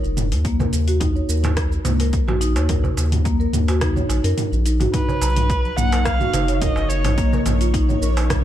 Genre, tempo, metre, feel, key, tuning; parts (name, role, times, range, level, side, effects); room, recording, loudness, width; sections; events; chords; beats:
organic downtempo; 107 BPM; 4/4; straight; Eb minor; A4 = 440 Hz
marimba with soft mallets; arpeggios; 0.0-8.4 s; Bb3 to Bb5; -24 LUFS; left 1 dB; ping-pong delay
round analog bass; bass; 0.0-8.4 s; F1 to Gb2; -20 LUFS; equal; sidechain pumping
deep house drum kit; drums; 0.0-8.4 s; hi-hat, rim click, shaker, toms; -26 LUFS; right 1 dB; overdrive
darbuka; percussion; 0.3-8.4 s; -30 LUFS; right 4 dB
electronic kick drum; drums; 0.4-8.4 s; -23 LUFS; equal; overdrive
dark kamancheh; melody; 4.9-7.5 s; B4 to F#5; -25 LUFS; right 2 dB; ping-pong delay
granular cloud pad; sustained chords; 5.9-8.4 s; Bb3 to C#5; -30 LUFS; right 1 dB; built-in reverb, sidechain pumping
light reverb, digital ambience; dark, warm production; -17 LUFS; side -12 dB against mid
0.0-4.9 A section; 4.9-8.4 B section
kick drops out 4.4-4.9
0.4 Ebm7; 4.9 Badd9; 7.2 Bbm
| 0.45 1.01 1.57 2.13 | 2.69 3.25 3.81 4.37 | 4.93 5.50 6.06 6.62 | 7.18 7.74 8.30